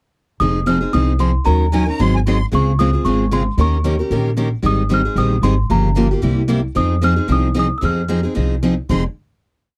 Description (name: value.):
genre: acoustic string swing (jazz manouche).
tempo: 226 BPM.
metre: 4/4.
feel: swing 56% on 8ths.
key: F minor.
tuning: A4 = 435 Hz.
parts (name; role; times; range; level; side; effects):
small celesta; melody; 0.4-8.2 s; Bb5 to F6; -24 LUFS; equal; none.
picked steel-string acoustic guitar; accompaniment; 0.4-9.0 s; C3 to Bb4; -22 LUFS; equal; none.
picked steel-string acoustic guitar; accompaniment; 0.4-9.0 s; C3 to Bb4; -25 LUFS; equal; none.
upright bass; bass; 0.4-9.0 s; F1 to F2; -20 LUFS; equal; none.
musette accordion; second line; 1.7-2.5, 8.9-9.0 s; Ab5 to C6; -27 LUFS; equal; none.
room: little or no reverb.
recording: dry, close 1970s-style studio recording.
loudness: -17 LUFS.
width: mono.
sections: 0.4-8.9 A section; 8.9-9.8 final chord.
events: none.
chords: 0.4 Fm7; 1.5 Ebm7; 2.0 Ab7; 2.5 Dbmaj7; 3.6 Eb7; 4.6 Abmaj7; 5.7 Gm7b5; 6.2 C7; 6.8 Fm7.